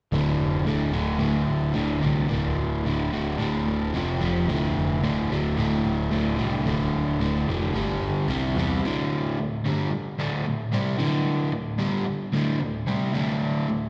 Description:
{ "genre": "rock", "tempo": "111 BPM", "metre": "4/4", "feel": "straight", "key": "D minor", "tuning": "A4 = 440 Hz", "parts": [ { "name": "crunchy overdriven guitar", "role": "riff", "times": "0.1-13.9 s", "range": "D2 to C4", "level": "-26 LUFS", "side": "equal", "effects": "slapback echo" }, { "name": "fuzz picked electric bass", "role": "bass", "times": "0.1-8.8 s", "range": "D1 to E2", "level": "-30 LUFS", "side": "equal", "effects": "overdrive" } ], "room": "moderate plate reverb, RT60 3.7 s", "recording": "live gig heard through the venue's PA, recital hall reverb", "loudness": "-25 LUFS", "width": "mono", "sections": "0.1-8.8 A section; 8.8-13.9 B section", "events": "none", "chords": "0.1 D5; 3.9 F5; 4.5 Dm; 7.7 G5; 8.3 C5; 8.8 D5" }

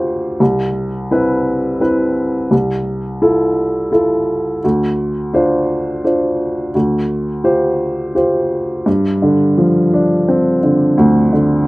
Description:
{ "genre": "folk", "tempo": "85 BPM", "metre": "3/4", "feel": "straight", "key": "unclear", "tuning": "A4 = 440 Hz", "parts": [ { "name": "dark upright piano", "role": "solo", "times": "0.0-11.7 s", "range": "C2 to C5", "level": "-13 LUFS", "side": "equal", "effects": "none" } ], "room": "light reverb", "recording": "recorded outdoors, with no room sound", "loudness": "-13 LUFS", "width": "side -21 dB against mid", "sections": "0.0-8.9 A section; 8.9-11.7 B section", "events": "none", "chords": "0.4 Cmaj7; 2.5 Fmaj7/C; 4.6 Dm7; 6.7 G7sus4/D" }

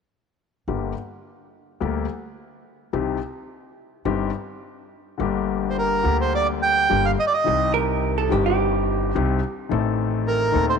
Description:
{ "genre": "tango", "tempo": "106 BPM", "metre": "4/4", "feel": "rubato", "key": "G minor", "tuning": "A4 = 439 Hz", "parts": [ { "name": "warm concert grand piano", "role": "accompaniment", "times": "0.7-10.8 s", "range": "Eb1 to A4", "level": "-24 LUFS", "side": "left 10 dB", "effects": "none" }, { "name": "upright bass", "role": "bass", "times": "0.7-10.8 s", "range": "G1 to Eb2", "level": "-27 LUFS", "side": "right 2 dB", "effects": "none" }, { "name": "bandoneon", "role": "melody", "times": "5.7-10.8 s", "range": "Bb4 to G5", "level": "-21 LUFS", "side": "right 4 dB", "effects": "none" }, { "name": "vintage hollow-body jazz guitar", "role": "second line", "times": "7.7-9.5 s", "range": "G4 to Bb4", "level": "-24 LUFS", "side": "right 13 dB", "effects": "none" } ], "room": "moderate plate reverb, RT60 3.1 s", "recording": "1960s-style stereo with parts hard left and right", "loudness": "-20 LUFS", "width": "side -6 dB against mid", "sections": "0.7-5.2 A section; 5.2-10.8 B section", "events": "none", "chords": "0.7 Gm; 2.9 Cm; 5.2 Gm; 7.5 Cm; 9.7 Adim" }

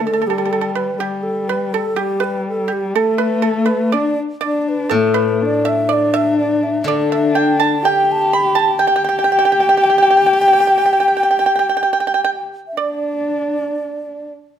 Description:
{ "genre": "chinese traditional, Chinese chamber ensemble", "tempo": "61 BPM", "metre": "4/4", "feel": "rubato", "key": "D zhi mode", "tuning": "A4 = 442 Hz", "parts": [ { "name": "xiao", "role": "melody", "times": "0.0-14.3 s", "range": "G4 to B5", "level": "-19 LUFS", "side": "equal", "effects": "none" }, { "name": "pipa", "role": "second line", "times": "0.0-14.3 s", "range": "G4 to B5", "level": "-19 LUFS", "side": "right 7 dB", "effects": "none" }, { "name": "warm horsehead fiddle", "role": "second line", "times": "0.0-14.3 s", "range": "G3 to G4", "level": "-18 LUFS", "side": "left 3 dB", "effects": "none" }, { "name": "steel-string zither", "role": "accompaniment", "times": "0.0-9.8 s", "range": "A2 to D3", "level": "-22 LUFS", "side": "left 5 dB", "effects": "none" } ], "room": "light reverb", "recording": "close, detailed microphones", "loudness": "-14 LUFS", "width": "side -9 dB against mid", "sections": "0.0-14.6 A section", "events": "none", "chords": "none" }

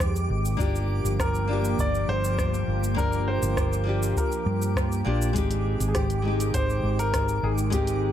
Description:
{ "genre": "sunset chillout", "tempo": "101 BPM", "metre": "4/4", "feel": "straight", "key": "unclear", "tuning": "A4 = 440 Hz", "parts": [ { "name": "nylon-string guitar", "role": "accompaniment", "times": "0.0-8.1 s", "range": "Ab3 to Bb4", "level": "-32 LUFS", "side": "moving between left 5 dB and right 2 dB", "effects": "auto-pan, ping-pong delay" }, { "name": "lush unison pad", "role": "sustained chords", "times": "0.0-8.1 s", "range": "Eb3 to G4", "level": "-32 LUFS", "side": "right 1 dB", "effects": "chorus, phaser" }, { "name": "hollow-body short-scale fingered electric bass", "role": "bass", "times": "0.0-8.1 s", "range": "G1 to G2", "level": "-26 LUFS", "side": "equal", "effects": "none" }, { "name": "deep house drum kit", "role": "drums", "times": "0.0-8.0 s", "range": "hi-hat, rim click, shaker", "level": "-34 LUFS", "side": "equal", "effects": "none" }, { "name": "electronic kick drum", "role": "drums", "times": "0.0-7.8 s", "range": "none", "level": "-29 LUFS", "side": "equal", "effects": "none" }, { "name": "twinkling granular texture", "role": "texture", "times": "0.0-8.1 s", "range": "D6", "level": "-39 LUFS", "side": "equal", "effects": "built-in reverb" }, { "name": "warm grand piano", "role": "melody", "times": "1.2-8.1 s", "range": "G4 to D5", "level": "-30 LUFS", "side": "left 1 dB", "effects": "ping-pong delay" } ], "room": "light reverb", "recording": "dark, warm production", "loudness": "-23 LUFS", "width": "side -10 dB against mid", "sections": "0.0-8.1 A section", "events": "none", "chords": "0.0 Fm9; 0.6 Gm7; 5.4 Abmaj7#11" }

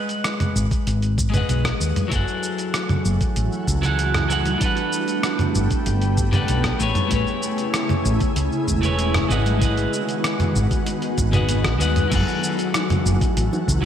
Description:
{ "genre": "sunset chillout", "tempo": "96 BPM", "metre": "4/4", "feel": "straight", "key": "F# dorian", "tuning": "A4 = 438 Hz", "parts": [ { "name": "electric guitar at the edge of break-up", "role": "accompaniment", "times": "0.0-13.8 s", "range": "F#3 to F#5", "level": "-24 LUFS", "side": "moving between left 6 dB and right 5 dB", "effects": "auto-pan, ping-pong delay" }, { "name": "dusty soul sampler-style drum kit", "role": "drums", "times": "0.1-13.8 s", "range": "crash cymbal, hi-hat, rim click, shaker, toms", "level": "-25 LUFS", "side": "equal", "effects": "overdrive, gated reverb" }, { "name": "congas and bongos", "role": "percussion", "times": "0.4-13.7 s", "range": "none", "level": "-30 LUFS", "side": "right 2 dB", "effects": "none" }, { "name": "woody fretless electric bass", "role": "bass", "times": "0.6-13.8 s", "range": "E1 to D#2", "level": "-22 LUFS", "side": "equal", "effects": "none" }, { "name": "electronic kick drum", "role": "drums", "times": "0.7-13.8 s", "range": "none", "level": "-24 LUFS", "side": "equal", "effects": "overdrive" }, { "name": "shimmering ambient pad", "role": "sustained chords", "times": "2.7-13.8 s", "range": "C#3 to G#4", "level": "-26 LUFS", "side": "left 1 dB", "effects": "chorus, built-in reverb, vintage 12-bit sampler grit" } ], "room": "moderate lush hall reverb, RT60 2.2 s", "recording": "bright 1980s-style digital production", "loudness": "-18 LUFS", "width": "side -9 dB against mid", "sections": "0.0-12.1 A section; 12.1-13.8 B section", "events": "none", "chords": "0.0 G#m7; 2.1 F#m9; 4.6 Gmaj9; 6.8 Amaj7; 9.3 G#m7; 12.1 F#m9" }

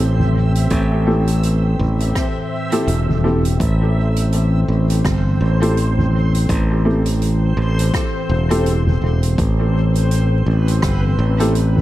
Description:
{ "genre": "ambient dub", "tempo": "83 BPM", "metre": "4/4", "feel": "swing 58% on 16ths", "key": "A minor", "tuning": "A4 = 439 Hz", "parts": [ { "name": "warbly tape-like pad", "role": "sustained chords", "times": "0.0-11.8 s", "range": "A2 to G5", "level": "-24 LUFS", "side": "left 2 dB", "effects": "chorus, built-in reverb" }, { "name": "modern bright fingered electric bass", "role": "bass", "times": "0.0-11.8 s", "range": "E1 to A1", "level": "-16 LUFS", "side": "equal", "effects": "none" }, { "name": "backwards swelling texture", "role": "texture", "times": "0.0-11.8 s", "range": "C4 to E5", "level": "-27 LUFS", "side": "left 1 dB", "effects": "built-in reverb" }, { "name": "soft-mallet drum kit", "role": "drums", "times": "0.2-11.8 s", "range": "hi-hat, rim click, toms", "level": "-26 LUFS", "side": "equal", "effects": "dub echo" }, { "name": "electronic kick drum", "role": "drums", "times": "0.7-11.0 s", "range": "none", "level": "-21 LUFS", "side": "equal", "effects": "overdrive" }, { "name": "dark upright piano", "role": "stabs", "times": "1.1-11.5 s", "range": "C4 to A4", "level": "-23 LUFS", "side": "equal", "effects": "dub echo" } ], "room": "light reverb, small room ambience", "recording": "vinyl crackle", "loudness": "-14 LUFS", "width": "side -15 dB against mid", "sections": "0.0-11.8 A section", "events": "none", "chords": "0.0 Am7" }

